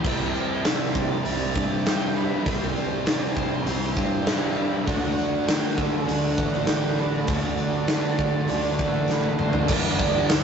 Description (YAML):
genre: rock, shoegaze and dream pop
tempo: 99 BPM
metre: 4/4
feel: straight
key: unclear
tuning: A4 = 440 Hz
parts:
  - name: octave-fuzz lead guitar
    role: melody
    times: 0.0-10.4 s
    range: B4 to G5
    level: -36 LUFS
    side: right 2 dB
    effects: distortion
  - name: picked twelve-string acoustic guitar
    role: arpeggios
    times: 0.0-10.4 s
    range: E3 to A4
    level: -34 LUFS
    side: right 3 dB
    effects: none
  - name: biting overdriven guitar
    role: riff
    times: 0.0-10.4 s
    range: G2 to G4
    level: -30 LUFS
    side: right 6 dB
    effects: none
  - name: distorted electric guitar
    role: riff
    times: 0.0-9.7 s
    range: C3 to D4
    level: -30 LUFS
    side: equal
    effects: distortion
  - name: thick fuzz guitar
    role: riff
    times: 0.0-10.4 s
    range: G2 to D4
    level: -29 LUFS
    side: left 2 dB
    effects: distortion
  - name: growling fingered electric bass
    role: bass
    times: 0.0-10.4 s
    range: G1 to G2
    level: -31 LUFS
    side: equal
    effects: overdrive
  - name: huge arena drum kit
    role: drums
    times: 0.0-10.4 s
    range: crash cymbal, hi-hat, kick drum, snare drum, toms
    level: -25 LUFS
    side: equal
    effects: none
  - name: tambourine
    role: percussion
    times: 0.0-10.4 s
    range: none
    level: -48 LUFS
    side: left 6 dB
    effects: none
room: moderate stone room reverb, RT60 1.1 s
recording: rough rehearsal-room recording, tube saturation, nothing above 7.9 kHz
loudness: -21 LUFS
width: side -7 dB against mid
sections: 0.0-9.7 A section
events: drum fill 9.1-9.7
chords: 0.0 C; 4.9 D6; 9.7 G6